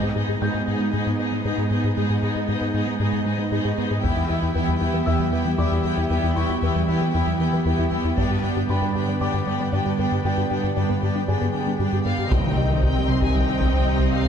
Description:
cinematic, hybrid orchestral and electronic film score; 116 BPM; 4/4; straight; C harmonic minor; A4 = 440 Hz
rich studio violin section; second line; 0.0-14.3 s; G4 to G5; -31 LUFS; left 5 dB
bright symphonic viola section; accompaniment; 0.0-14.3 s; Cb4 to E4; -30 LUFS; right 1 dB
airy breathy pad; sustained chords; 0.0-14.3 s; D3 to E5; -28 LUFS; equal; chorus
resonant blip pluck; arpeggios; 0.0-14.3 s; C3 to Ab4; -30 LUFS; right 1 dB; phaser, ping-pong delay
round analog bass; riff; 0.0-14.3 s; C2 to Ab3; -25 LUFS; left 2 dB
rich symphonic cello section; bass; 0.0-14.3 s; E2 to C3; -27 LUFS; right 3 dB
felt-muted upright piano; texture; 0.0-14.3 s; Ab4 to G6; -34 LUFS; left 3 dB; ping-pong delay
solo taiko drums; drums; 4.0-5.0, 8.2-9.2, 12.3-14.1 s; -28 LUFS; equal
warm symphonic violin section; melody; 12.1-14.3 s; F5 to C6; -30 LUFS; left 3 dB
mellow French horn section; sustained chords; 12.3-14.3 s; Eb3 to G3; -31 LUFS; left 3 dB
rich symphonic double bass section; bass; 12.3-14.3 s; C2; -29 LUFS; right 3 dB
warm sub bass; bass; 12.3-14.3 s; C2; -27 LUFS; equal
impact; sound effects; 12.3-14.3 s; -32 LUFS; equal
moderate scoring stage reverb, RT60 1.7 s; dark, warm production; -20 LUFS; side -7 dB against mid
0.0-12.3 A section; 12.3-14.3 B section
build-up 0.0-12.3; impact 12.3-14.3
0.0 Abm; 4.0 Em; 8.2 G; 12.3 Cm

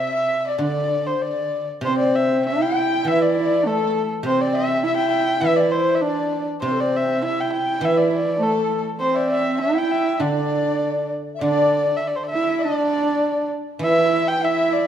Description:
chinese traditional, Chinese chamber ensemble; 100 BPM; 2/4; rubato; A4 = 440 Hz
warm erhu; melody; 0.0-14.9 s; A4 to G5; -22 LUFS; equal
mellow hollow dizi; second line; 0.0-14.9 s; A4 to G5; -25 LUFS; left 6 dB
guzheng; accompaniment; 0.0-14.9 s; C3 to E3; -26 LUFS; right 1 dB
rich horsehead fiddle; second line; 1.8-14.9 s; A3 to E4; -23 LUFS; right 4 dB
moderate recital hall reverb, RT60 1.6 s; -18 LUFS; side -9 dB against mid
0.0-1.8 A section; 1.8-11.4 B section; 11.4-14.9 A section

